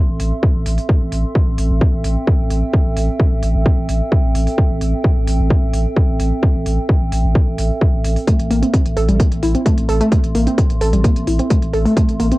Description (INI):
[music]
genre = driving peak-time techno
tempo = 130 BPM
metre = 4/4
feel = straight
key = A minor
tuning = A4 = 441 Hz
[part]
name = warbly tape-like pad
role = texture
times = 0.0-12.4 s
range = C4 to C6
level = -25 LUFS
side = right 2 dB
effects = chorus, built-in reverb, sidechain pumping, cassette tape
[part]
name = saturated sub bass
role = bass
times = 0.1-12.3 s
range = A1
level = -18 LUFS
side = equal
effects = tube saturation, sidechain pumping, low-pass filter
[part]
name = electronic hi-hat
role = drums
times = 0.2-12.4 s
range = none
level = -32 LUFS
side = right 1 dB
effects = cassette tape
[part]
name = electronic kick drum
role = drums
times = 0.4-12.1 s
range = none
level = -15 LUFS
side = equal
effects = cassette tape
[part]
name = warbly dusty pluck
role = riff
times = 8.3-12.4 s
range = G3 to A4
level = -18 LUFS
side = equal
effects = chorus, tube saturation, sidechain pumping, cassette tape, analog delay
[sound]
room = little or no reverb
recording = home recording on cassette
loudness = -14 LUFS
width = side -19 dB against mid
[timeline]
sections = 0.0-12.4 A section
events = fade-in on ambient pad 0.0-12.4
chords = 0.0 Am